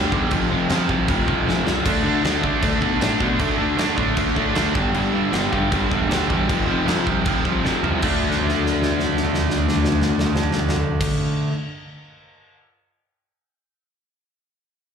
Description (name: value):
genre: punk rock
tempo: 155 BPM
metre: 4/4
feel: straight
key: unclear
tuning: A4 = 440 Hz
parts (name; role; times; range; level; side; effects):
- distorted electric guitar; riff; 0.0-11.5 s; F2 to D4; -23 LUFS; right 10 dB; distortion, slapback echo
- raw garage guitar; riff; 0.0-11.6 s; F2 to D4; -24 LUFS; left 12 dB; overdrive, slapback echo
- fuzz picked electric bass; bass; 0.0-11.0 s; E1 to D3; -25 LUFS; equal; overdrive
- big rock drum kit; drums; 0.1-12.6 s; crash cymbal, kick drum, snare drum, toms; -24 LUFS; equal; none
room: little or no reverb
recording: live gig heard through the venue's PA, club reverb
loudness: -18 LUFS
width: side -7 dB against mid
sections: 0.0-8.0 A section; 8.0-11.1 B section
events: drum fill 1.5-1.8, 7.6-8.0, 8.2-11.0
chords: 0.3 F5; 1.8 D5; 4.7 G5; 6.5 F5; 8.0 D5